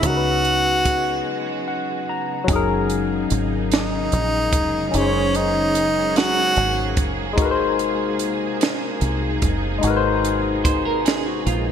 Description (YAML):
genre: slow six-eight R&B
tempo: 49 BPM (dotted quarters)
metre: 6/8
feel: straight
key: Gb lydian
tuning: A4 = 440 Hz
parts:
  - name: breathy tenor saxophone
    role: melody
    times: 0.0-7.1 s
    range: Db4 to F#4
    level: -21 LUFS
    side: right 1 dB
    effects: ping-pong delay
  - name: barky tine electric piano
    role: accompaniment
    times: 0.0-11.7 s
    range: C#3 to A#5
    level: -23 LUFS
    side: left 5 dB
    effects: overdrive, phaser
  - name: dark studio string section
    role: sustained chords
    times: 0.0-11.7 s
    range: C3 to Ab4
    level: -29 LUFS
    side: right 3 dB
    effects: none
  - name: deep dub fingered electric bass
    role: bass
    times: 0.0-11.7 s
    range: F1 to C#2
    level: -25 LUFS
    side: right 1 dB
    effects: none
  - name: compact cocktail drum kit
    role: drums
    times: 0.0-11.7 s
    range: hi-hat, kick drum, snare drum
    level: -22 LUFS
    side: right 2 dB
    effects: none
  - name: semi-hollow electric guitar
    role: second line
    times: 10.6-11.7 s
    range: Eb4 to C5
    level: -25 LUFS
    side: right 6 dB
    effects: wide subtle chorus
room: moderate lush hall reverb, RT60 2.6 s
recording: bright 1980s-style digital production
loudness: -18 LUFS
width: side -8 dB against mid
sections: 0.0-2.5 A section; 2.5-11.7 B section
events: break 1.3-2.5; tine electric piano fill 1.3-2.5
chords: 0.0 C#7sus4; 2.5 Gb69; 7.4 Ab9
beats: | 0.04 1.26 | 2.48 3.71 | 4.93 6.16 | 7.38 8.61 | 9.83 11.06